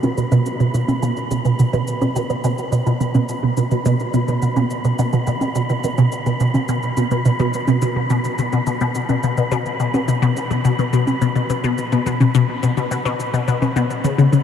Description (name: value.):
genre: ambient, sequencer-driven space music.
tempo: 106 BPM.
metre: 4/4.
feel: straight.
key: unclear.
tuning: A4 = 440 Hz.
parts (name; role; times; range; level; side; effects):
resonant blip pluck; riff; 0.0-14.4 s; B2 to C#3; -17 LUFS; equal; phaser, analog chorus, analog delay.
congas and cabasa; percussion; 0.0-14.4 s; none; -28 LUFS; right 2 dB; overdrive, analog delay.
wind-like tuned noise texture; texture; 0.0-14.4 s; B5; -28 LUFS; equal; built-in reverb.
room: wet huge ambient reverb, RT60 7.3 s.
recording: dark, warm production.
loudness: -16 LUFS.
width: side -8 dB against mid.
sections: 0.0-14.4 A section.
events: none.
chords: none.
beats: | 0.46 1.03 1.59 2.16 | 2.72 3.29 3.86 4.42 | 4.99 5.55 6.12 6.69 | 7.25 7.82 8.38 8.95 | 9.52 10.08 10.65 11.21 | 11.78 12.35 12.91 13.48 | 14.04.